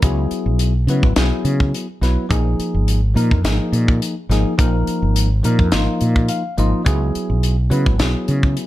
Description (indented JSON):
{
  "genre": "electric jazz fusion",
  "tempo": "105 BPM",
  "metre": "4/4",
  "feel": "straight",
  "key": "unclear",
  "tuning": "A4 = 440 Hz",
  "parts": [
    { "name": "bell-like tine electric piano", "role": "accompaniment", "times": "0.0-8.7 s", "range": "F3 to F5", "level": "-21 LUFS", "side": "left 2 dB", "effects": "wide subtle chorus, plate reverb" },
    { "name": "mellow fretless electric bass", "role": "bass", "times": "0.0-8.6 s", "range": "Ab1 to Db3", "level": "-17 LUFS", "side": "equal", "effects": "none" },
    { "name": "tight funk drum kit", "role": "drums", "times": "0.0-8.7 s", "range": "hi-hat, kick drum, snare drum", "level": "-19 LUFS", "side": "equal", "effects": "none" }
  ],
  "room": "studio ambience",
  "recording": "none",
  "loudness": "-15 LUFS",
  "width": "side -15 dB against mid",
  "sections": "0.0-8.7 A section",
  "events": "tine electric piano fill 6.0-6.9",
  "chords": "0.0 Dbm7; 2.3 Bb5; 6.9 Dbm7"
}